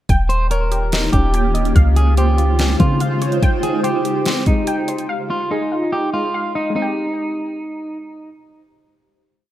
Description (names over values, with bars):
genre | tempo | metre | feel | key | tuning
hip hop, atmospheric cloud-rap | 144 BPM | 4/4 | half-time | Ab major | A4 = 441 Hz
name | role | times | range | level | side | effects
granular cloud pad | sustained chords | 0.7-5.1 s | Db3 to C5 | -23 LUFS | right 1 dB | built-in reverb, sidechain pumping
warbly dusty pluck | arpeggios | 0.1-9.5 s | Ab3 to G5 | -24 LUFS | left 1 dB | chorus, digital delay
soft 808-style bass | bass | 0.1-3.4 s | Eb1 to Db3 | -16 LUFS | equal | none
smooth R&B drum kit | drums | 0.1-5.1 s | hi-hat, kick drum, snare drum | -18 LUFS | equal | none
electric guitar at the edge of break-up | melody | 0.3-8.0 s | Eb4 to C5 | -22 LUFS | right 1 dB | spring reverb, digital delay
room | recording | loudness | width
light reverb | none | -15 LUFS | side -13 dB against mid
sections
0.1-6.8 verse; 6.8-9.5 final chord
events
none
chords
0.1 Eb7; 1.8 Dbmaj7; 3.4 Abmaj7; 5.1 Fm7; 6.8 Abmaj7